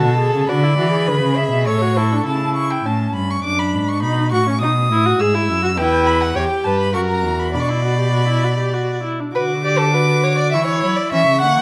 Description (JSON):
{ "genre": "classical, baroque-style fugue for string quartet", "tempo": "102 BPM", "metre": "3/4", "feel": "straight", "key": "B minor from 5.8 s", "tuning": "A4 = 440 Hz", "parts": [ { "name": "rich violin", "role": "melody", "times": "0.0-11.6 s", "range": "F#5 to E6", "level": "-25 LUFS", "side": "equal", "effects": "none" }, { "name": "warm violin", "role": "second line", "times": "0.0-2.3, 5.8-11.6 s", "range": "A4 to F#5", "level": "-23 LUFS", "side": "equal", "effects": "none" }, { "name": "warm viola", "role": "accompaniment", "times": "0.0-11.6 s", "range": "A#3 to A4", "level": "-24 LUFS", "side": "equal", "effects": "none" }, { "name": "warm cello", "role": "bass", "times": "0.0-11.6 s", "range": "E2 to F#3", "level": "-22 LUFS", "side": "equal", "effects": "none" } ], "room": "moderate recital hall reverb, RT60 1.5 s", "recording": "none", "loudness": "-18 LUFS", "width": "mono", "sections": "0.0-2.3 A section; 2.3-9.3 B section; 9.3-11.6 C section", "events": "none", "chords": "0.5 E7/D; 1.7 A; 2.3 A7/C#; 3.4 D/F#; 4.0 B7; 5.2 E/G#; 5.8 Em; 6.4 N.C.; 6.9 F#7; 7.5 Bm; 9.3 Bm/D; 10.5 E5" }